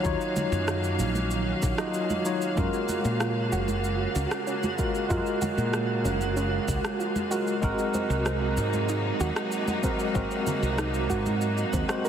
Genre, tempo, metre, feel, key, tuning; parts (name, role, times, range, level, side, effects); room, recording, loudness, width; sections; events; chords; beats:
sunset chillout; 95 BPM; 4/4; straight; A4 = 440 Hz
tine electric piano; accompaniment; 0.0-12.1 s; Gb3 to Eb5; -29 LUFS; moving between left 3 dB and right 7 dB; medium stereo tremolo, auto-pan, digital delay
clear symphonic string section; sustained chords; 0.0-12.1 s; C3 to F5; -33 LUFS; left 1 dB
woody fretless electric bass; bass; 0.0-11.8 s; Gb1 to Bb2; -29 LUFS; equal
electronic cabasa and rim click; drums; 0.0-12.1 s; -36 LUFS; equal
electronic kick drum; drums; 0.0-11.9 s; -31 LUFS; equal
twinkling granular texture; texture; 0.0-12.1 s; Gb4; -35 LUFS; right 3 dB; built-in reverb
congas; percussion; 0.4-11.4 s; -35 LUFS; right 2 dB
soft round pluck; arpeggios; 2.6-12.1 s; C4 to Bb4; -36 LUFS; right 3 dB; chorus, digital delay
moderate concert hall reverb, RT60 2.1 s; heavily compressed radio sound; -24 LUFS; side -8 dB against mid
0.0-12.1 A section
0.0 Ebm9; 2.6 Gbmaj9; 7.6 Ab9
| 0.05 0.68 1.31 1.95 | 2.58 3.21 3.84 4.47 | 5.10 5.73 6.37 7.00 | 7.63 8.26 8.89 9.52 | 10.15 10.79 11.42 12.05